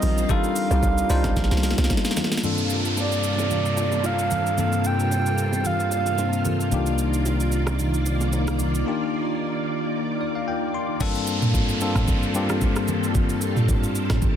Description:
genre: amapiano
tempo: 112 BPM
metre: 4/4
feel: swing 55% on 16ths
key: G minor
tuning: A4 = 440 Hz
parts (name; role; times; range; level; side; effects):
- breathy flute-like synth lead; melody; 0.0-6.4 s; D5 to G5; -28 LUFS; right 3 dB; chorus, tape echo
- bell-like tine electric piano; accompaniment; 0.0-14.4 s; G2 to C6; -26 LUFS; moving between left 7 dB and left 1 dB; auto-pan
- string machine, violins; sustained chords; 0.0-14.4 s; G2 to D5; -27 LUFS; right 1 dB; ensemble chorus, sidechain pumping
- hollow log drum bass; bass; 0.0-1.9 s; Bb1 to C2; -22 LUFS; equal; none
- smooth R&B drum kit; drums; 0.0-14.4 s; crash cymbal, hi-hat, kick drum, rim click, shaker, snare drum, toms; -25 LUFS; right 1 dB; none
- congas and bongos; percussion; 0.0-14.4 s; none; -33 LUFS; right 4 dB; none
- downlifter; sound effects; 2.4-6.7, 11.0-14.4 s; none; -31 LUFS; right 1 dB; none
- modern bright fingered electric bass; bass; 6.7-8.8 s; C2; -23 LUFS; equal; none
room: light reverb, digital ambience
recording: dense, heavily limited modern master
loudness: -20 LUFS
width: side -9 dB against mid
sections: 0.0-2.4 A section; 2.4-11.0 B section; 11.0-14.4 C section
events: drop 0.0-2.4; drum fill 1.4-2.4; break 8.9-11.0; tine electric piano fill 9.9-11.0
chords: 0.0 Cm11; 2.4 Gm11; 6.7 Cm11; 11.0 Gm11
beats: | 0.29 0.83 1.36 1.90 | 2.44 2.97 3.51 4.04 | 4.58 5.11 5.65 6.18 | 6.72 7.26 7.79 8.33 | 8.86 9.40 9.94 10.47 | 11.01 11.54 12.08 12.61 | 13.15 13.69 14.22

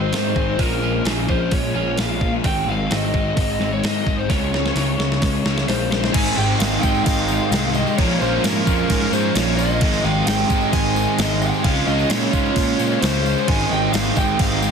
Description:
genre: rock, shoegaze and dream pop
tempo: 131 BPM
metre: 4/4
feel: straight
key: Ab major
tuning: A4 = 440 Hz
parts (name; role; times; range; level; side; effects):
- lead guitar through a small cranked amp; melody; 0.0-14.7 s; Bb4 to Ab5; -24 LUFS; equal; overdrive, digital delay
- electric guitar through a small old amp; arpeggios; 0.0-14.7 s; Eb3 to G4; -31 LUFS; right 3 dB; lush chorus, digital delay
- biting overdriven guitar; riff; 0.0-14.7 s; Ab2 to F4; -26 LUFS; right 13 dB; reverse reverb
- fuzz guitar; riff; 0.0-14.7 s; Ab2 to Db4; -25 LUFS; left 11 dB; distortion, ensemble chorus
- fuzz picked electric bass; bass; 0.0-14.7 s; Ab1 to Bb2; -24 LUFS; equal; overdrive
- detuned 8-bit digital drum machine; drums; 0.1-14.6 s; crash cymbal, hi-hat, kick drum, snare drum; -22 LUFS; equal; none
- warm analog pad; sustained chords; 6.1-14.7 s; Db4 to Db6; -31 LUFS; equal; chorus
- distorted electric guitar; riff; 6.1-14.7 s; Ab2 to Db4; -26 LUFS; equal; overdrive
- tambourine; percussion; 6.3-14.7 s; none; -36 LUFS; left 18 dB; none
room: little or no reverb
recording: dense, heavily limited modern master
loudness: -17 LUFS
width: side -6 dB against mid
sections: 0.0-6.1 A section; 6.1-14.7 B section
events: drum fill 4.3-6.1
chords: 0.0 Ab; 0.6 Bbm7; 2.4 Ab; 4.3 Db; 6.1 Abmaj7; 8.0 Bbm7; 9.8 Abmaj7; 11.6 Dbmaj7; 13.5 Abmaj7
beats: 0.13 | 0.59 1.05 1.52 1.98 | 2.44 2.91 3.37 3.83 | 4.29 4.76 5.22 5.68 | 6.14 6.60 7.06 7.52 | 7.98 8.44 8.90 9.36 | 9.81 10.27 10.73 11.19 | 11.65 12.11 12.56 13.02 | 13.48 13.94 14.39

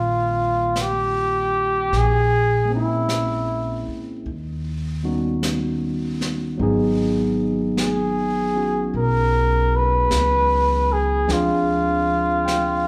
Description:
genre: jazz ballad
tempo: 51 BPM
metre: 4/4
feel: swing 67% on 8ths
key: unclear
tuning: A4 = 437 Hz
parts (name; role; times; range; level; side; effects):
- breathy trumpet; melody; 0.0-12.9 s; Fb4 to Cb5; -23 LUFS; equal; none
- barky tine electric piano; accompaniment; 0.0-12.9 s; Eb3 to G5; -26 LUFS; equal; none
- upright bass; bass; 0.0-12.9 s; Ab1 to Eb2; -27 LUFS; equal; none
- jazz brush drum kit; drums; 0.8-12.9 s; brushed snare drum, hi-hat, snare drum; -34 LUFS; equal; none
room: wet large studio reverb, RT60 1.2 s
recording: band playing live in one room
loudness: -21 LUFS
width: mono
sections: 0.0-12.9 A section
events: none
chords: 0.0 Eb69; 1.9 Bbm7b5; 4.3 Eb7alt; 6.6 Abm7; 11.3 Dm7b5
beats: 0.75 | 1.93 3.10 4.27 5.44 | 6.61 7.78 8.94 10.11 | 11.28 12.46

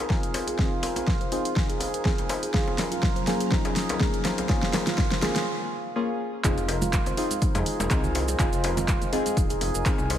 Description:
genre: afro house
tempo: 123 BPM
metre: 4/4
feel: swing 55% on 16ths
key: F phrygian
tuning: A4 = 440 Hz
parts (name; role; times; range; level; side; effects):
- dark analog pad; sustained chords; 0.0-10.2 s; Gb3 to Bb5; -35 LUFS; equal; chorus, sidechain pumping
- handpan; arpeggios; 0.0-10.2 s; Eb4 to C5; -31 LUFS; right 2 dB; sidechain pumping, tape echo
- deep mellow chord stab; stabs; 0.0-10.2 s; Bb3 to Ab4; -31 LUFS; left 2 dB; wide subtle chorus, sidechain pumping, tape echo
- deep house drum kit; drums; 0.1-10.2 s; handclaps, hi-hat, snare drum; -30 LUFS; equal; overdrive, studio reverb
- electronic kick drum; drums; 0.1-10.0 s; none; -26 LUFS; equal; overdrive, studio reverb
- djembe; percussion; 0.1-10.2 s; none; -35 LUFS; left 4 dB; none
- dark detuned saw bass; bass; 6.4-10.2 s; Eb1 to F2; -30 LUFS; equal; tube saturation, sidechain pumping
- maracas; percussion; 6.4-10.1 s; none; -37 LUFS; right 6 dB; none
- congas; percussion; 6.8-9.3 s; none; -34 LUFS; right 3 dB; none
room: light reverb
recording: none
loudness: -23 LUFS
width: side -10 dB against mid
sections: 0.0-6.4 A section; 6.4-10.2 B section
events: build-up 0.0-6.4; drum fill 0.0-5.5; break 5.5-6.4; drop 6.4-10.2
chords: 0.0 Fm7; 2.5 Gbmaj9; 6.4 Fm7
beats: 0.10 | 0.59 1.08 1.56 2.05 | 2.54 3.03 3.52 4.00 | 4.49 4.98 5.47 5.96 | 6.44 6.93 7.42 7.91 | 8.39 8.88 9.37 9.86

